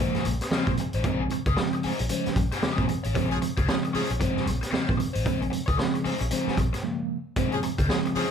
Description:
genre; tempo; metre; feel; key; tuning
funk; 114 BPM; 4/4; swing 60% on 16ths; Bb minor; A4 = 440 Hz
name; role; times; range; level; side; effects
biting overdriven guitar; accompaniment; 0.0-8.3 s; Db4 to Db5; -31 LUFS; left 6 dB; wah
mellow tine electric piano; stabs; 0.0-8.2 s; Db3 to Db4; -28 LUFS; right 2 dB; medium stereo tremolo
raw garage drum kit; drums; 0.1-8.3 s; hi-hat, kick drum, snare drum; -29 LUFS; equal; none
vintage muted fingered electric bass; bass; 0.2-8.2 s; A1 to Bb2; -29 LUFS; equal; none
congas; percussion; 0.2-8.0 s; none; -37 LUFS; right 4 dB; none
warm horn section; second line; 3.3-4.1, 7.5-8.3 s; F3 to Ab4; -32 LUFS; left 1 dB; none
room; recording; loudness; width
moderate club reverb, RT60 0.8 s; none; -24 LUFS; side -7 dB against mid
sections
0.0-8.3 A section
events
break 6.8-7.4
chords
0.0 Bbm9

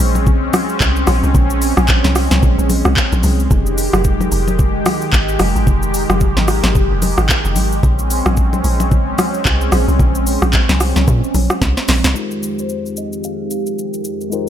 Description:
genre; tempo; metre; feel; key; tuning
amapiano; 111 BPM; 4/4; swing 58% on 16ths; F minor; A4 = 440 Hz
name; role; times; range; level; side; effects
lush unison pad; sustained chords; 0.0-14.5 s; F2 to G4; -20 LUFS; right 1 dB; chorus, phaser, low-pass filter
deep log drum bass; bass; 0.0-12.1 s; F1 to Bb2; -16 LUFS; equal; none
afro-pop drum kit; drums; 0.2-14.5 s; handclaps, hi-hat, kick drum, rim click, shaker, snare drum; -16 LUFS; equal; none
congas; percussion; 0.2-12.0 s; none; -22 LUFS; left 3 dB; none
bell-like tine electric piano; accompaniment; 12.1-14.5 s; Ab3 to C5; -24 LUFS; left 7 dB; low-pass filter
glassy wavetable pluck; melody; 12.2-14.5 s; Bb4 to F5; -29 LUFS; left 6 dB; chorus, low-pass filter
room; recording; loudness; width
digital ambience; none; -13 LUFS; side -10 dB against mid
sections
0.0-12.2 A section; 12.2-14.5 B section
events
drop 0.0-12.2; drum fill 11.6-12.2; filter sweep 12.2-14.5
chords
0.0 Bbm9; 3.5 Fm9; 7.8 Bbm9; 12.2 Fm9

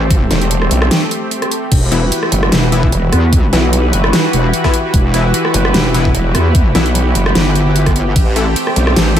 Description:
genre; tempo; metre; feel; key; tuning
heavy wobble dubstep; 149 BPM; 4/4; swing 54% on 16ths, half-time; E minor; A4 = 440 Hz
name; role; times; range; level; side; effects
lush unison pad; sustained chords; 0.0-9.2 s; E3 to B4; -18 LUFS; equal; chorus, sidechain pumping
wobble bass; bass; 0.0-9.2 s; E1 to E2; -14 LUFS; equal; chorus, overdrive
dubstep drum kit; drums; 0.1-9.2 s; crash cymbal, hi-hat, ride cymbal, rim click, snare drum; -17 LUFS; equal; overdrive
electronic kick drum; drums; 0.1-8.2 s; none; -13 LUFS; equal; overdrive
vowel-sweep wobble bass; bass; 0.3-8.9 s; E1 to B1; -14 LUFS; equal; chorus, overdrive
supersaw stab; stabs; 1.9-9.2 s; E3 to A4; -22 LUFS; left 4 dB; cassette tape, ping-pong delay
room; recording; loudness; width
light reverb, digital ambience; none; -10 LUFS; side -10 dB against mid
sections
0.0-9.2 A section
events
break 0.9-1.7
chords
0.0 Am7; 1.7 Emadd9; 8.2 Am7

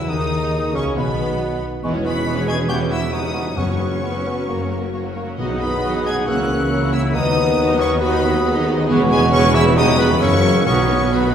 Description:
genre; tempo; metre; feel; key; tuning
classical; 137 BPM; 4/4; rubato; B major; A4 = 440 Hz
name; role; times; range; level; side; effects
rich symphonic violin section; melody; 0.0-11.3 s; G#5 to G#6; -27 LUFS; left 3 dB; none
dark cor anglais; second line; 0.0-11.3 s; G#3 to G#4; -27 LUFS; right 1 dB; none
mellow clarinet; second line; 0.0-11.3 s; G#4 to G#5; -28 LUFS; left 2 dB; none
mellow hollow concert flute; second line; 0.0-11.3 s; B5 to E6; -28 LUFS; equal; none
warm symphonic violin section; second line; 0.0-11.3 s; B3 to F#5; -29 LUFS; left 2 dB; none
mellow bassoon; accompaniment; 0.0-11.3 s; B2 to B3; -27 LUFS; equal; none
dark French horn section; sustained chords; 0.0-11.3 s; E4 to B4; -25 LUFS; left 1 dB; none
dark trombone section; sustained chords; 0.0-11.3 s; B2 to C#4; -28 LUFS; right 2 dB; none
concert harp; arpeggios; 0.0-11.3 s; F#2 to C#5; -27 LUFS; left 4 dB; none
dark symphonic cello section; bass; 0.0-11.3 s; D#2 to D#3; -26 LUFS; right 1 dB; none
warm symphonic double bass section; bass; 0.0-11.3 s; E1 to E2; -26 LUFS; right 2 dB; none
warm tuba; bass; 0.0-11.3 s; E1 to E2; -26 LUFS; right 2 dB; none
rich symphonic viola section; accompaniment; 0.1-11.3 s; D#3 to D#4; -25 LUFS; right 2 dB; none
timpani; percussion; 3.6-6.0, 10.7-11.3 s; F#2 to B2; -28 LUFS; equal; none
room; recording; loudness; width
wet scoring stage reverb, RT60 1.7 s; heard from further back in the room; -16 LUFS; side -8 dB against mid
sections
0.0-11.3 A section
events
none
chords
0.1 B; 1.8 C#m7/E; 2.7 C#m7b5/E; 3.6 F#sus4; 4.5 F#; 5.4 B; 6.3 A#dim/C#; 7.2 B/D#; 8.9 C#m7/E; 9.8 C#m7b5/E; 10.2 F#7; 10.7 B

